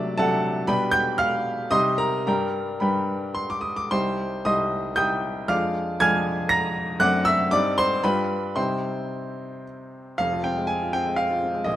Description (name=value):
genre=classical, romantic character piece for solo piano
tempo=107-125 BPM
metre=3/4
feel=rubato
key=C minor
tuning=A4 = 441 Hz
part: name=clear baby grand piano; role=solo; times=0.0-11.8 s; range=F1 to Bb6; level=-21 LUFS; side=equal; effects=none
room=light reverb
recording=close, detailed microphones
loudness=-21 LUFS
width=side -13 dB against mid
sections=0.0-10.2 A section; 10.2-11.8 B section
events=none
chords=0.0 D7/C; 0.7 G/B; 1.7 Cm; 2.3 G; 3.9 Cm; 5.5 Ddim/F; 7.0 D7/F#; 7.5 Cm/G; 8.0 G7; 8.6 Cm; 10.2 Fm